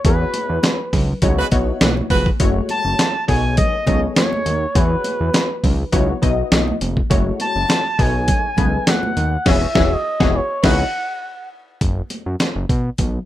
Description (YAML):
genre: early-eighties boogie funk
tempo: 102 BPM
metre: 4/4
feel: straight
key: unclear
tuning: A4 = 440 Hz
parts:
  - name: funky polysynth comp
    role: accompaniment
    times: 0.0-10.8 s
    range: G#3 to D#5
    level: -23 LUFS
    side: left 4 dB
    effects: chorus
  - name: fat analog bass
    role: bass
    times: 0.0-13.2 s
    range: E1 to B2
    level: -20 LUFS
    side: equal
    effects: none
  - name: dusty soul sampler-style drum kit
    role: drums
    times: 0.0-13.1 s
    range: crash cymbal, handclaps, hi-hat, kick drum, snare drum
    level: -18 LUFS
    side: equal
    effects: none
  - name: expressive synth lead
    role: melody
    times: 0.1-11.5 s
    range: B4 to A5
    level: -22 LUFS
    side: equal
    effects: chorus, plate reverb
  - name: congas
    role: percussion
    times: 0.1-13.1 s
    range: none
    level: -27 LUFS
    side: right 2 dB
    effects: none
  - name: warm horn section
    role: second line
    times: 1.4-2.3, 10.6-10.8 s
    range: F#4 to B4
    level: -23 LUFS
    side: right 2 dB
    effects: plate reverb
room: light reverb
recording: rough home demo mix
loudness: -16 LUFS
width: side -13 dB against mid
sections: 0.0-11.8 A section; 11.8-13.3 B section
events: band accent 0.0-2.4, 9.5-11.8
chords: 0.0 E69; 1.2 C#m11; 2.4 F#m9; 3.3 B13; 4.8 E69; 5.9 C#m11; 7.1 F#m9; 8.0 B13; 9.5 E69; 10.6 C#m11; 11.8 N.C.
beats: | 0.05 0.64 1.23 1.81 | 2.40 2.99 3.58 4.17 | 4.75 5.34 5.93 6.52 | 7.11 7.70 8.28 8.87 | 9.46 10.05 10.64 11.22 | 11.81 12.40 12.99